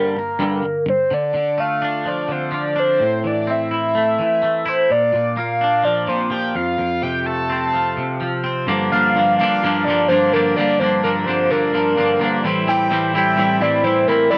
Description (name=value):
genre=rock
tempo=127 BPM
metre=4/4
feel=straight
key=G dorian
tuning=A4 = 440 Hz
part: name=overdriven synth lead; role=melody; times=0.0-14.4 s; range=Bb4 to A5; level=-21 LUFS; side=equal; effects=phaser, slapback echo
part: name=twangy electric guitar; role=riff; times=0.0-14.4 s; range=F2 to E4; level=-22 LUFS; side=equal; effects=double-tracked
room=moderate studio ambience, RT60 0.5 s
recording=none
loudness=-18 LUFS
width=mono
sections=0.0-1.1 A section; 1.1-8.7 B section; 8.7-14.4 C section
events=none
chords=0.0 Gm; 1.1 Dm; 3.0 Am; 4.9 Bb; 6.5 F; 8.7 Gm7; 12.4 Am7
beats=0.17 0.64 | 1.11 1.59 2.06 2.53 | 3.01 3.48 3.95 4.42 | 4.89 5.37 5.84 6.31 | 6.78 7.25 7.72 8.20 | 8.67 9.14 9.61 10.08 | 10.55 11.02 11.49 11.96 | 12.43 12.90 13.37 13.84 | 14.31